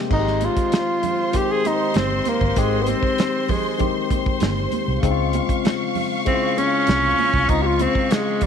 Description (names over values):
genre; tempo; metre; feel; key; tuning
lush 1970s-style soul; 98 BPM; 4/4; straight; Ab major; A4 = 440 Hz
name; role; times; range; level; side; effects
barky tine electric piano; accompaniment; 0.0-8.5 s; C3 to G4; -24 LUFS; left 11 dB; overdrive, wide subtle chorus
breathy tenor saxophone; melody; 0.1-8.5 s; G3 to Ab4; -21 LUFS; right 1 dB; none
clear studio string section; second line; 0.1-8.5 s; C5 to Db6; -27 LUFS; right 2 dB; slapback echo
vintage muted fingered electric bass; bass; 0.1-8.0 s; G1 to Db2; -24 LUFS; right 1 dB; none
warm soul drum kit; drums; 0.1-8.5 s; crash cymbal, hi-hat, kick drum, snare drum; -24 LUFS; right 1 dB; none
congas; percussion; 0.4-8.5 s; none; -31 LUFS; right 15 dB; none
room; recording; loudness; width
light reverb, studio ambience; 1960s-style stereo with parts hard left and right; -18 LUFS; side -7 dB against mid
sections
0.1-8.5 A section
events
tenor saxophone solo 0.1-8.5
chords
0.1 Abmaj7; 5.0 Dbmaj7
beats
| 0.11 0.72 1.34 1.96 | 2.57 3.19 3.80 4.42 | 5.03 5.65 6.26 6.88 | 7.50 8.11